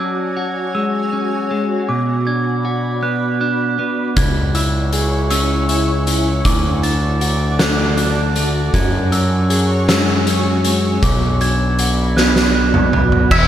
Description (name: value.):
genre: post-rock.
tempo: 52 BPM (dotted quarters).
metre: 6/8.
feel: straight.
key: F# minor.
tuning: A4 = 438 Hz.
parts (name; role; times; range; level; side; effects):
granular cloud pad; sustained chords; 0.0-13.5 s; G#3 to D6; -24 LUFS; equal; built-in reverb.
clean electric guitar; arpeggios; 0.0-13.5 s; E2 to G#4; -20 LUFS; left 1 dB; spring reverb, tape echo.
glockenspiel with rubber mallets; arpeggios; 0.0-13.5 s; D6 to A6; -23 LUFS; right 3 dB; tape echo.
growling fingered electric bass; bass; 4.2-13.5 s; E1 to F#2; -18 LUFS; equal; overdrive.
oversized low-tuned drum kit; drums; 4.2-13.5 s; crash cymbal, hi-hat, kick drum, snare drum, toms; -18 LUFS; equal; none.
twangy electric guitar; melody; 13.3-13.5 s; E5; -15 LUFS; equal; wide subtle chorus.
room: light reverb, small room reverb.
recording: none.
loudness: -14 LUFS.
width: side -10 dB against mid.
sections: 0.0-13.3 A section.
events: drum fill 12.2-13.3.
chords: 0.0 F#sus2; 1.9 Bm; 4.2 C#m; 6.5 D; 8.7 F#sus2; 11.0 Bm.